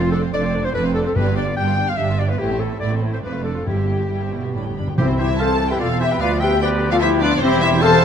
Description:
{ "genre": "quick classical-period movement for symphony orchestra", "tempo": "146 BPM", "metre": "3/4", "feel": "rubato", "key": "C major", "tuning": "A4 = 440 Hz", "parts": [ { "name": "warm symphonic violin section", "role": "melody", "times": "0.0-8.0 s", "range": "C5 to B5", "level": "-25 LUFS", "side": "left 3 dB", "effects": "none" }, { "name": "bright clarinet", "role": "second line", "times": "0.0-8.0 s", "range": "C4 to G5", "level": "-24 LUFS", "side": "left 2 dB", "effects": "none" }, { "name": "rich chamber viola section", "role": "accompaniment", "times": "0.0-8.0 s", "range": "E3 to C5", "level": "-28 LUFS", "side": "right 1 dB", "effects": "none" }, { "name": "rich chamber double bass section", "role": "bass", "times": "0.0-8.0 s", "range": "E1 to D2", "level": "-24 LUFS", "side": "right 3 dB", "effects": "none" }, { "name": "warm chamber cello section", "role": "bass", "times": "0.0-8.0 s", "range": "C2 to B2", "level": "-24 LUFS", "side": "right 4 dB", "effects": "none" }, { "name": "warm studio violin section", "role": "second line", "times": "0.1-8.0 s", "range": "G4 to A5", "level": "-28 LUFS", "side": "left 2 dB", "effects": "none" }, { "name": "timpani", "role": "percussion", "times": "1.2-5.6 s", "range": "G2 to C3", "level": "-24 LUFS", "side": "left 1 dB", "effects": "none" }, { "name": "warm oboe", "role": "second line", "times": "5.0-8.0 s", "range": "G4 to F5", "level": "-26 LUFS", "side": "right 2 dB", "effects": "none" }, { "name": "mellow French horn section", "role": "sustained chords", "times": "5.0-8.0 s", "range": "C4 to A4", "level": "-23 LUFS", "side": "left 8 dB", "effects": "none" }, { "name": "dark trumpet section", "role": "stabs", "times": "5.0-8.0 s", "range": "E4 to C5", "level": "-24 LUFS", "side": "equal", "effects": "none" } ], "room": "moderate scoring stage reverb, RT60 2.0 s", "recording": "none", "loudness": "-17 LUFS", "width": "side -8 dB against mid", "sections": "0.0-5.0 A section; 5.0-8.0 B section", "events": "timpani fill 4.6-5.0", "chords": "0.0 Dm7/F; 1.2 G7; 2.4 Am; 3.2 Dm/F; 3.7 C/G; 4.6 G; 5.0 C; 6.2 G13/D; 7.4 C/E", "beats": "0.34 0.75 | 1.16 1.57 1.99 | 2.40 2.82 3.24 | 3.67 4.11 4.55 | 4.99 5.40 5.81 | 6.21 6.62 7.02 | 7.43 7.83" }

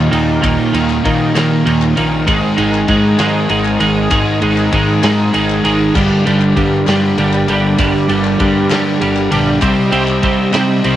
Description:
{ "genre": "indie rock", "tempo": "65 BPM (dotted quarters)", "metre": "6/8", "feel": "straight", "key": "unclear", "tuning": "A4 = 441 Hz", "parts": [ { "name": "lush unison pad", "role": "sustained chords", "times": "0.0-11.0 s", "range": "Bb3 to F5", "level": "-25 LUFS", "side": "left 1 dB", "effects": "chorus" }, { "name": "crunchy overdriven guitar", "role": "riff", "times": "0.0-11.0 s", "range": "Eb2 to C4", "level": "-18 LUFS", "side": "left 7 dB", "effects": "none" }, { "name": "twelve-string electric guitar", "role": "riff", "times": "0.0-11.0 s", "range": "Eb2 to C4", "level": "-14 LUFS", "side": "right 3 dB", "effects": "ensemble chorus, analog delay" }, { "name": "growling picked electric bass", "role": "bass", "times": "0.0-11.0 s", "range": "G1 to Eb3", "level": "-20 LUFS", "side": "equal", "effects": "overdrive" }, { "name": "loose indie drum kit", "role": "drums", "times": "0.1-11.0 s", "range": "crash cymbal, kick drum, ride cymbal, snare drum", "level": "-21 LUFS", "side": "left 1 dB", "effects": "cassette tape" }, { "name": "group handclap", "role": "percussion", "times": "0.4-10.7 s", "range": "none", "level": "-29 LUFS", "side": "left 12 dB", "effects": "none" } ], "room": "light reverb", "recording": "home recording on cassette", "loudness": "-11 LUFS", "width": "side -12 dB against mid", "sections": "0.0-11.0 A section", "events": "none", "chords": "0.0 Ebadd9; 2.3 Abadd9; 6.0 Gm; 9.6 Cm", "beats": "| 0.44 1.36 | 2.28 3.20 | 4.12 5.03 | 5.95 6.87 | 7.79 8.71 | 9.62 10.54" }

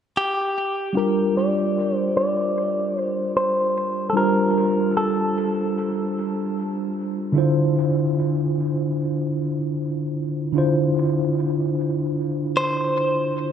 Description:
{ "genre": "R&B", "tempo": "75 BPM", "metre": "4/4", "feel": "straight", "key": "G minor", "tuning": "A4 = 440 Hz", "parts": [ { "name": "direct-recorded clean electric guitar", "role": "melody", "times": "0.2-6.9, 12.6-13.5 s", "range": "G4 to D5", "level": "-22 LUFS", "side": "left 1 dB", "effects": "low-pass filter, dub echo" }, { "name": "mellow tine electric piano", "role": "accompaniment", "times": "0.9-13.5 s", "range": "D3 to C5", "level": "-21 LUFS", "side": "right 1 dB", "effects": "medium stereo tremolo, low-pass filter, dub echo" } ], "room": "wet spring reverb, RT60 2.5 s", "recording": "echo-heavy mix", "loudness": "-20 LUFS", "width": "side -8 dB against mid", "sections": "1.0-13.5 A section", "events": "filter sweep 1.0-13.5", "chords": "0.0 N.C.; 1.0 Gm9; 7.4 Dm9", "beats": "0.16 | 0.96 1.76 2.56 3.36 | 4.16 4.96 5.76 6.56 | 7.36 8.16 8.96 9.76 | 10.56 11.36 12.16 12.96" }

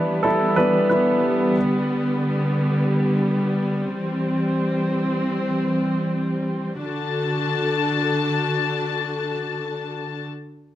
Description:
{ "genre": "pop", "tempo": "free time", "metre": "none", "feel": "none", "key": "D mixolydian", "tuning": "A4 = 440 Hz", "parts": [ { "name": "clear concert grand piano", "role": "accompaniment", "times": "0.0-1.6 s", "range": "E3 to B4", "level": "-18 LUFS", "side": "right 1 dB", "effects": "none" }, { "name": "warm studio string section", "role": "sustained chords", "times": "0.0-10.2 s", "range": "D3 to A5", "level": "-21 LUFS", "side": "left 1 dB", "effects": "none" } ], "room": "moderate studio reverb, RT60 0.5 s", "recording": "dark, warm production", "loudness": "-20 LUFS", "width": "side -12 dB against mid", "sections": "0.0-6.8 A section; 6.8-9.5 B section", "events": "grand piano solo 0.0-6.8", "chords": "0.0 Em; 1.6 G; 3.9 C; 6.8 D", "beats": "free time" }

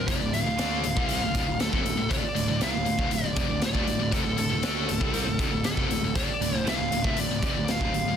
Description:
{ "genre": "hard rock", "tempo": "118 BPM", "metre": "4/4", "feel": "straight", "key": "D minor", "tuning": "A4 = 440 Hz", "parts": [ { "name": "high-gain lead guitar", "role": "melody", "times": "0.0-8.2 s", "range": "A4 to F5", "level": "-30 LUFS", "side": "right 1 dB", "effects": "distortion, slapback echo" }, { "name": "distorted electric guitar", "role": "riff", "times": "0.0-8.2 s", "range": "D2 to D4", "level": "-33 LUFS", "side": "right 12 dB", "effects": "overdrive" }, { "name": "high-gain distorted guitar", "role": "riff", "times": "0.0-8.2 s", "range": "D2 to D4", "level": "-30 LUFS", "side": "left 10 dB", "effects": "distortion" }, { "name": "fuzz picked electric bass", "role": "bass", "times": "0.0-8.2 s", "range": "D1 to D2", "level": "-32 LUFS", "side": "equal", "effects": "overdrive" }, { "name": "raw garage drum kit", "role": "drums", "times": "0.1-8.1 s", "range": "hi-hat, kick drum, snare drum", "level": "-29 LUFS", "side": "equal", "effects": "none" } ], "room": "small room ambience", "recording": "dense, heavily limited modern master", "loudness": "-24 LUFS", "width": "side -8 dB against mid", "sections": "0.0-8.2 A section", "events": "none", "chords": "0.0 Dm", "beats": "| 0.08 0.59 1.10 1.60 | 2.11 2.62 3.12 3.63 | 4.14 4.64 5.15 5.66 | 6.16 6.67 7.17 7.68" }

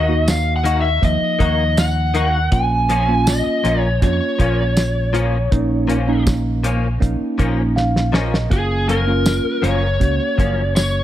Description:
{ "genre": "straight-eighth soul blues", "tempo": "80 BPM", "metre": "4/4", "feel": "straight", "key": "Bb minor", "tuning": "A4 = 441 Hz", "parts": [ { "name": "lead guitar through a small cranked amp", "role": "melody", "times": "0.0-11.0 s", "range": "Ab4 to Ab5", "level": "-20 LUFS", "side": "left 1 dB", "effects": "overdrive" }, { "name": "direct-recorded clean electric guitar", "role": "stabs", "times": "0.0-10.6 s", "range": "Gb2 to Gb4", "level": "-25 LUFS", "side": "left 4 dB", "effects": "ensemble chorus, slapback echo" }, { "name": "fingered electric bass", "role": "bass", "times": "0.0-11.0 s", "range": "Gb1 to F2", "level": "-20 LUFS", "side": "equal", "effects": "none" }, { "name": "tine electric piano", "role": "accompaniment", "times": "0.1-11.0 s", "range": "F3 to F5", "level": "-23 LUFS", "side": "right 2 dB", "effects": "phaser" }, { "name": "cloth-damped thuddy drum kit", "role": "drums", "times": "0.3-10.9 s", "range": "hi-hat, kick drum, snare drum, tambourine", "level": "-19 LUFS", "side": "equal", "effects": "none" } ], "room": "light reverb, small room ambience", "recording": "none", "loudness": "-15 LUFS", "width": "side -12 dB against mid", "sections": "0.0-11.0 A section", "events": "tine electric piano fill 7.4-8.5; drum fill 7.8-8.5", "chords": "0.0 Ebm; 2.5 Bbm; 8.5 Gbmaj7", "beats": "0.27 1.02 1.77 | 2.52 3.27 4.01 4.76 | 5.51 6.26 7.01 7.76 | 8.51 9.26 10.00 10.75" }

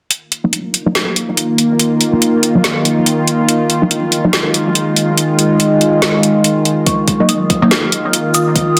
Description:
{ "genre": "deep dubstep", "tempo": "142 BPM", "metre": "4/4", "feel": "swing 58% on 16ths, half-time", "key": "Eb minor", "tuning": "A4 = 439 Hz", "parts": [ { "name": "bowed-like drone", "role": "sustained chords", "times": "1.1-8.8 s", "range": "Eb3 to F4", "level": "-16 LUFS", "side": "equal", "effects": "built-in reverb" }, { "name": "garage drum kit", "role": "drums", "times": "0.1-8.8 s", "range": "hi-hat, shaker, snare drum", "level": "-17 LUFS", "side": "equal", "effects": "none" }, { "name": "filtered dub chord stab", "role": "stabs", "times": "0.4-4.3, 7.2-7.7 s", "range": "Gb3 to Eb4", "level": "-19 LUFS", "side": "equal", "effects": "phaser, dub echo" }, { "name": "dark detuned synth bell", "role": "melody", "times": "6.9-8.8 s", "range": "Db6 to F6", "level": "-23 LUFS", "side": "equal", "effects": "chorus, low-pass filter, dub echo" }, { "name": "electronic kick drum", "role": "drums", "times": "6.9-8.7 s", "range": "none", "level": "-19 LUFS", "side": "equal", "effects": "high-pass filter on kick, high-pass filter on room" } ], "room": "wet digital room reverb, RT60 1.0 s", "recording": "dense, heavily limited modern master, vinyl crackle", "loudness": "-14 LUFS", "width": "mono", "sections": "0.1-6.9 A section; 6.9-8.8 B section", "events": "build-up 6.9-8.8; filter sweep on synth bell 6.9-8.8", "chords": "0.1 Eb5", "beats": "| 0.11 0.53 0.95 1.37 | 1.80 2.22 2.64 3.06 | 3.49 3.91 4.33 4.75 | 5.18 5.60 6.02 6.44 | 6.87 7.29 7.71 8.13 | 8.56" }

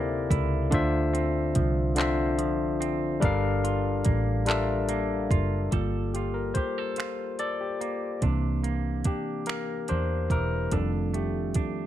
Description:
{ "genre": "slow six-eight R&B", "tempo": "48 BPM (dotted quarters)", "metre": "6/8", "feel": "straight", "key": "G dorian", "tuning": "A4 = 442 Hz", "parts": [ { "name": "semi-hollow electric guitar", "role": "second line", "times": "0.0-11.9 s", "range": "F2 to A4", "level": "-34 LUFS", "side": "right 15 dB", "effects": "none" }, { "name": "barky tine electric piano", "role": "accompaniment", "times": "0.0-11.9 s", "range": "C3 to F5", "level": "-28 LUFS", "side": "left 4 dB", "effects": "overdrive" }, { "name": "vintage muted fingered electric bass", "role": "bass", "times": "0.0-11.6 s", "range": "E1 to E2", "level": "-29 LUFS", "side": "right 1 dB", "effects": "none" }, { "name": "smooth R&B drum kit", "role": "drums", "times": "0.3-11.7 s", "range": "finger snaps, handclaps, hi-hat, kick drum", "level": "-27 LUFS", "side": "right 1 dB", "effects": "none" } ], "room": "light reverb", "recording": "none", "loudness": "-25 LUFS", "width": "side -12 dB against mid", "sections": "0.0-5.7 A section; 5.7-11.9 B section", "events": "tine electric piano solo 5.7-11.9", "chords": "0.0 C13; 0.7 Dm9; 3.2 Gm9; 8.2 C9; 10.7 F13", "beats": "| 0.72 1.97 | 3.22 4.47 | 5.72 6.97 | 8.22 9.47 | 10.72" }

